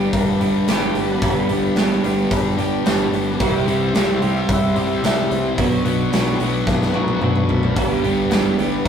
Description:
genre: rock, shoegaze and dream pop.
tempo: 110 BPM.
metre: 4/4.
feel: straight.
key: G major.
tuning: A4 = 440 Hz.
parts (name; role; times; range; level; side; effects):
lush unison pad; sustained chords; 0.0-8.9 s; F#4 to C6; -31 LUFS; left 1 dB; chorus, phaser.
electric guitar through a small old amp; arpeggios; 0.0-8.9 s; E3 to G4; -28 LUFS; equal; none.
crunchy overdriven guitar; riff; 0.0-8.9 s; G2 to G4; -22 LUFS; right 6 dB; none.
thick fuzz guitar; riff; 0.0-8.9 s; G2 to C4; -21 LUFS; left 4 dB; distortion.
growling fingered electric bass; bass; 0.0-8.9 s; G1 to C2; -28 LUFS; equal; overdrive.
huge arena drum kit; drums; 0.1-8.9 s; hi-hat, kick drum, snare drum, toms; -22 LUFS; equal; none.
room: moderate studio ambience, RT60 0.5 s.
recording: rough rehearsal-room recording.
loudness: -16 LUFS.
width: side -8 dB against mid.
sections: 0.0-8.9 A section.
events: drum fill 6.7-7.8.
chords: 0.0 G; 3.4 C; 5.6 Bm; 7.8 G.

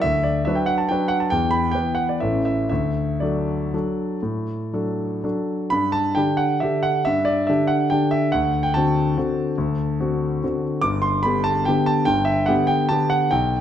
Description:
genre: classical, piano waltz.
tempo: 115-150 BPM.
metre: 3/4.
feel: rubato.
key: D major, G major from 5.7 s.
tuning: A4 = 441 Hz.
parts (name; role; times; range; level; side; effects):
clear concert grand piano; solo; 0.0-13.6 s; G1 to D6; -19 LUFS; equal; none.
room: wet recital hall reverb, RT60 1.3 s.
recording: none.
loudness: -19 LUFS.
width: side -10 dB against mid.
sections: 0.0-5.7 A section; 5.7-13.6 B section.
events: none.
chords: 0.0 Bm/D; 1.3 E5; 2.2 A; 2.7 D; 5.7 G5; 8.3 D7; 10.8 G.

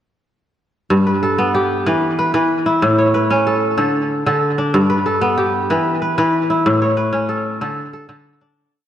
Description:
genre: west african traditional, West African string and xylophone music.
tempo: 125 BPM (dotted quarters).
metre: 12/8.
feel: straight.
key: G lydian.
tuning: A4 = 437 Hz.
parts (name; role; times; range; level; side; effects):
kora; solo; 0.9-8.9 s; G2 to C#5; -14 LUFS; equal; tape echo.
room: wet lush hall reverb, RT60 2.3 s.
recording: dreamy mix soaked in reverb, cassette tape.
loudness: -14 LUFS.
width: side -10 dB against mid.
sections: 0.9-8.6 A section.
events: fade-out 6.7-8.6.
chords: 0.9 G; 1.9 Em; 2.8 A; 3.8 D5; 4.7 G; 5.7 Em; 6.7 A; 7.6 D5.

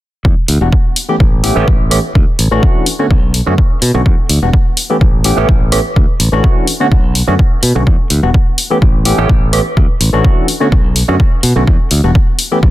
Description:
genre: filtered disco house.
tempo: 126 BPM.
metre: 4/4.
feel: swing 54% on 16ths.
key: E dorian.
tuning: A4 = 438 Hz.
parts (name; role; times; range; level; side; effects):
modern bright fingered electric bass; bass; 0.2-12.7 s; E1 to B2; -14 LUFS; equal; sidechain pumping, low-pass filter.
electronic kick drum; drums; 0.2-12.7 s; none; -10 LUFS; equal; overdrive.
electronic hi-hat; drums; 0.5-12.5 s; none; -16 LUFS; left 2 dB; overdrive, sidechain pumping on hats.
barky tine electric piano; accompaniment; 0.6-12.6 s; D3 to G4; -16 LUFS; equal; medium stereo tremolo, phaser, sidechain pumping, low-pass filter.
room: little or no reverb.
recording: dense, heavily limited modern master.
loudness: -9 LUFS.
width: side -15 dB against mid.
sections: 0.2-12.7 A section.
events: none.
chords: 0.2 E7(no3); 1.0 A7; 2.2 Dmaj7; 2.9 Bm9; 4.1 E7(no3); 4.8 A7; 6.0 Dmaj7; 6.7 Bm9; 7.9 E7(no3); 8.6 A7; 9.8 Dmaj7; 10.5 Bm9; 11.7 E7(no3).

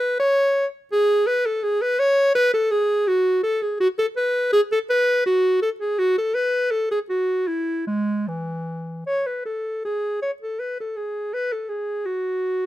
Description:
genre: classical, baroque-style fantasia for unaccompanied clarinet.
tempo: 75-84 BPM.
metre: 3/4.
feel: rubato.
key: E major.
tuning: A4 = 440 Hz.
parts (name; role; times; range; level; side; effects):
warm clarinet; solo; 0.0-12.7 s; E3 to C#5; -20 LUFS; equal; none.
room: little or no reverb.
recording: minimal, uncompressed stereo recording.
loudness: -20 LUFS.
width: side -14 dB against mid.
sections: 0.0-9.8 A section; 9.8-12.7 A section.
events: none.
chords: none.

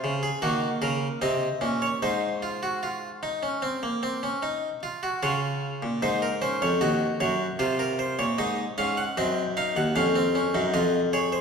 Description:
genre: classical, baroque-style 3-part fugue for harpsichord.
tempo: 76 BPM.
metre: 4/4.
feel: straight.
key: Db major.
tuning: A4 = 440 Hz.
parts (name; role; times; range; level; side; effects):
harpsichord; solo; 0.0-11.4 s; Eb2 to Gb5; -24 LUFS; equal; none.
room: wet recital hall reverb, RT60 1.7 s.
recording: heard from further back in the room, vinyl crackle.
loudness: -24 LUFS.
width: side -6 dB against mid.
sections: 0.0-5.2 A section; 5.2-11.4 B section.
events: none.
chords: 0.4 Ebm; 2.0 Ab; 5.2 Db; 6.8 Ebm7; 8.4 Ab7; 10.0 Db/F.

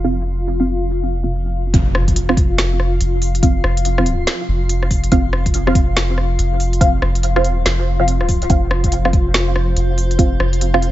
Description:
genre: deep dubstep.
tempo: 142 BPM.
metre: 4/4.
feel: swing 62% on 16ths, half-time.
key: unclear.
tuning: A4 = 440 Hz.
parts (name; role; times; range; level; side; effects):
granular cloud pad; sustained chords; 0.0-10.9 s; F4 to F5; -25 LUFS; left 2 dB; built-in reverb.
filtered dub chord stab; stabs; 0.0-10.9 s; C4 to F5; -21 LUFS; right 2 dB; phaser, analog chorus, cassette tape, dub echo.
soft dub sub bass; bass; 0.0-10.9 s; F1; -18 LUFS; equal; none.
deep house drum kit; drums; 1.7-10.9 s; hi-hat, rim click, snare drum; -21 LUFS; equal; none.
electronic kick drum; drums; 1.7-10.3 s; none; -16 LUFS; equal; none.
impact; sound effects; 1.7-3.4 s; none; -24 LUFS; equal; none.
room: little or no reverb.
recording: low-pass filter, nothing above 7.7 kHz.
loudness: -14 LUFS.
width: side -14 dB against mid.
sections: 0.0-1.7 A section; 1.7-10.9 B section.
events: filter sweep 0.0-1.7; drop 1.7-10.9; impact 1.7-3.4.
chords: 0.0 F5.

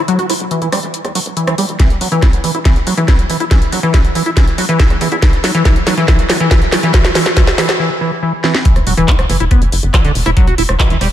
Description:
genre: psychedelic trance.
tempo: 140 BPM.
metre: 4/4.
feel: straight.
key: E minor.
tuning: A4 = 440 Hz.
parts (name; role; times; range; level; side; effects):
tight sequencer bass; bass; 0.0-11.1 s; E1 to E2; -20 LUFS; equal; high-pass filter.
liquid acid bass; riff; 0.1-11.1 s; D3 to F#4; -16 LUFS; equal; chorus, auto-pan, sidechain pumping, dub echo.
drum and bass drum kit; drums; 0.1-11.1 s; handclaps, hi-hat, rim click, snare drum; -17 LUFS; equal; none.
electronic kick drum; drums; 1.8-10.9 s; none; -11 LUFS; equal; none.
room: light reverb.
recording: none.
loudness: -10 LUFS.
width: side -12 dB against mid.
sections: 0.0-8.7 A section; 8.7-11.1 B section.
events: build-up 0.0-8.7; filter sweep on acid bass 0.0-8.7; drum fill 1.8-7.8, 8.4; break 7.8-8.7; drop 8.7-11.1.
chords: 0.0 E5.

